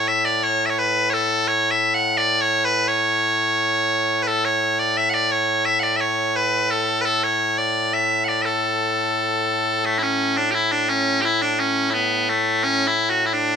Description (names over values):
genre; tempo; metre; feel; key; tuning
scottish traditional, Scottish pipe music; 86 BPM; 2/4; straight; A major; A4 = 442 Hz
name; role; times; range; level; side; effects
loud bright bagpipes; solo; 0.0-13.6 s; A2 to F#5; -18 LUFS; equal; none
room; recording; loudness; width
moderate large studio reverb, RT60 1.2 s; band playing live in one room; -18 LUFS; side -7 dB against mid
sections
0.0-9.8 A section; 9.8-13.6 A section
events
none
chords
none